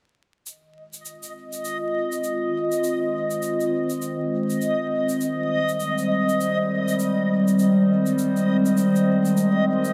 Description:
ambient dub; 101 BPM; 4/4; swing 60% on 16ths; F minor; A4 = 440 Hz
warbly tape-like pad; sustained chords; 1.6-9.9 s; Eb3 to C5; -23 LUFS; equal; chorus, built-in reverb, phaser
shaker; drums; 0.5-9.9 s; -39 LUFS; equal
backwards swelling texture; texture; 1.3-9.9 s; Eb5; -29 LUFS; equal; built-in reverb
moderate spring reverb, RT60 2.1 s; vinyl crackle; -22 LUFS; mono
0.5-9.9 A section
filter sweep on ambient pad 0.5-9.9
0.5 Fm7

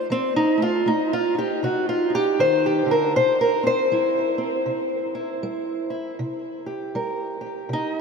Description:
acoustic country blues, solo or duo; 79 BPM; 4/4; swing 61% on 8ths; A4 = 439 Hz
fingerpicked old ladder-braced acoustic guitar; solo; 0.0-8.0 s; C3 to C5; -20 LUFS; equal; ping-pong delay
wet huge ambient reverb, RT60 7.7 s; dreamy mix soaked in reverb; -20 LUFS; side -5 dB against mid
0.0-8.0 A section
steel-string acoustic guitar solo 0.0-8.0
0.0 F7; 3.1 C7

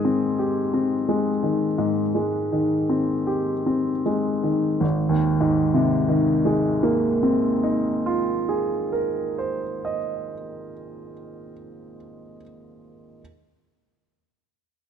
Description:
classical; 38-44 BPM; 4/4; rubato; Ab major; A4 = 440 Hz
clear baby grand piano; accompaniment; 0.0-13.2 s; Ab1 to Ab5; -21 LUFS; equal
moderate recital hall reverb, RT60 1.7 s; close, detailed microphones; -20 LUFS; side -8 dB against mid
0.0-4.8 A section; 4.8-11.0 B section
slowing down 0.0-4.8
0.0 Abmaj7; 4.8 Ab69

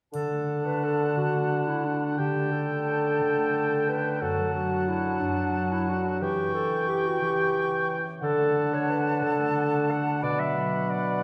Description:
classical, orchestral ballroom waltz; 178 BPM; 3/4; uneven beats, rubato; D major; A4 = 440 Hz
bright silver concert flute; second line; 0.1-11.2 s; A5 to C#6; -36 LUFS; equal
mellow clarinet; second line; 0.1-11.2 s; D4 to F#5; -31 LUFS; equal
warm oboe; second line; 0.1-11.2 s; F#5 to G5; -34 LUFS; equal
mellow bassoon; accompaniment; 0.1-11.2 s; B2 to F#3; -34 LUFS; equal
concert harp; arpeggios; 0.1-11.2 s; F#2 to D5; -34 LUFS; equal
triangle; percussion; 0.1-0.8 s; -60 LUFS; equal
wet scoring stage reverb, RT60 1.9 s; dark, warm production; -26 LUFS; mono
0.1-11.2 A section
0.1 D; 2.2 A7/D; 4.2 D/F#; 6.2 C#dim/E; 8.2 D; 10.2 Bm

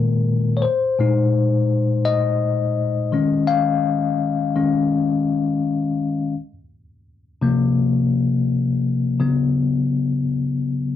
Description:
hip hop; 84 BPM; 4/4; swing 63% on 16ths; Bb minor; A4 = 440 Hz
bell-like tine electric piano; solo; 0.0-11.0 s; Bb2 to F5; -17 LUFS; left 3 dB; medium stereo tremolo, low-pass filter, cassette tape
moderate small room reverb, RT60 0.6 s; home recording on cassette; -18 LUFS; side -10 dB against mid
0.6-11.0 A section
tine electric piano solo 0.6-11.0
0.0 Bb7sus4; 3.1 Eb9sus4; 6.3 C7sus4; 9.2 Db7sus4

